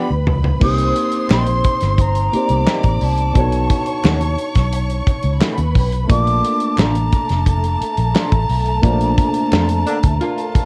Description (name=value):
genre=lush 1970s-style soul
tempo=88 BPM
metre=4/4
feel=straight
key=Bb major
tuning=A4 = 442 Hz
part: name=warm studio violin section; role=second line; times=0.0-10.7 s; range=A3 to D6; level=-29 LUFS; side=equal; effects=tape echo
part: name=dark baby grand piano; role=accompaniment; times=0.0-10.7 s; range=A3 to D5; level=-25 LUFS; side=equal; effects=none
part: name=electric guitar through a small old amp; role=riff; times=0.0-9.7 s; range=D#3 to G4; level=-27 LUFS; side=equal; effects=analog chorus
part: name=vintage muted fingered electric bass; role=bass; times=0.1-10.6 s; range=F1 to F2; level=-21 LUFS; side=equal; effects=none
part: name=modern studio drum kit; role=drums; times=0.3-10.7 s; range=crash cymbal, hi-hat, kick drum, snare drum, toms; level=-20 LUFS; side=equal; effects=none
part: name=breathy hollow jazz flute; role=melody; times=0.6-10.7 s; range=A5 to Eb6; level=-24 LUFS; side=equal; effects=tape echo
part: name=group handclap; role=percussion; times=1.3-9.7 s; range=none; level=-35 LUFS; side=equal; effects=none
part: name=warm horn section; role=stabs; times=9.9-10.7 s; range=D3 to F4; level=-25 LUFS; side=equal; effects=none
room=light reverb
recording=cassette tape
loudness=-17 LUFS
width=mono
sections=0.0-10.7 A section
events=drum fill 0.0-0.6; band accent 8.8-10.7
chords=0.0 G7; 0.6 Cm7; 3.4 B9; 6.1 Bbmaj7